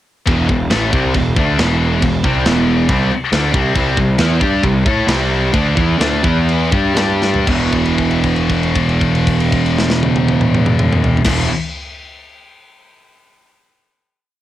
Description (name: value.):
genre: heavy metal.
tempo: 117-138 BPM.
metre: 4/4.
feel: straight.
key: E minor.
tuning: A4 = 438 Hz.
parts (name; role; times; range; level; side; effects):
scooped high-gain guitar; riff; 0.3-11.5 s; E2 to A4; -19 LUFS; left 6 dB; distortion, cassette tape.
sludgy distorted guitar; riff; 0.3-11.5 s; E2 to A4; -19 LUFS; right 6 dB; overdrive, cassette tape.
fuzz picked electric bass; bass; 0.3-11.5 s; E1 to A2; -17 LUFS; equal; overdrive.
tight metal drum kit; drums; 0.3-11.4 s; crash cymbal, kick drum, snare drum, toms; -19 LUFS; equal; cassette tape.
room: studio reverb.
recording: home recording on cassette.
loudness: -12 LUFS.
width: side -13 dB against mid.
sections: 0.3-7.5 riff; 7.5-11.6 final chord.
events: slowing down 3.8-7.5; drum fill 7.2; held note 7.5-11.3.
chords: 0.3 Em; 3.8 C5; 6.2 E5; 6.7 G5; 7.5 E5.